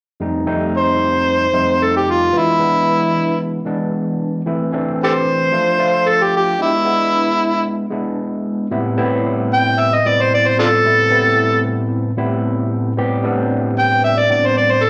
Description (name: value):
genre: blues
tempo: 113 BPM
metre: 4/4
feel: straight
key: A minor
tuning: A4 = 440 Hz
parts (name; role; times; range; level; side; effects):
- overdriven tine electric piano; accompaniment; 0.2-14.9 s; F2 to G4; -21 LUFS; equal; phaser, plate reverb, slapback echo
- overdriven harmonica; melody; 0.8-14.9 s; D4 to G5; -16 LUFS; equal; plate reverb, slapback echo
room: moderate club reverb, RT60 0.5 s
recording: live gig heard through the venue's PA, club reverb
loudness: -17 LUFS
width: mono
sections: 0.2-8.7 A section; 8.7-14.9 B section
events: harmonica solo 8.7-14.9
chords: 0.2 F7; 2.3 E7; 4.5 Am; 5.5 Dm; 6.6 E7; 8.7 Am7